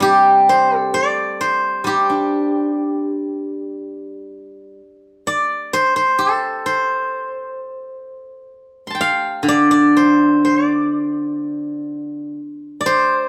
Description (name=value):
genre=chinese traditional, Chinese solo plucked strings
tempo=60-66 BPM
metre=2/4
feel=rubato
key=G shang mode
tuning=A4 = 441 Hz
part: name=steel-string zither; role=solo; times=0.0-13.3 s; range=C3 to C6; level=-18 LUFS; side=equal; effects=none
room=light reverb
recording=band playing live in one room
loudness=-17 LUFS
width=mono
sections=0.0-3.8 A section; 3.8-13.3 B section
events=none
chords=none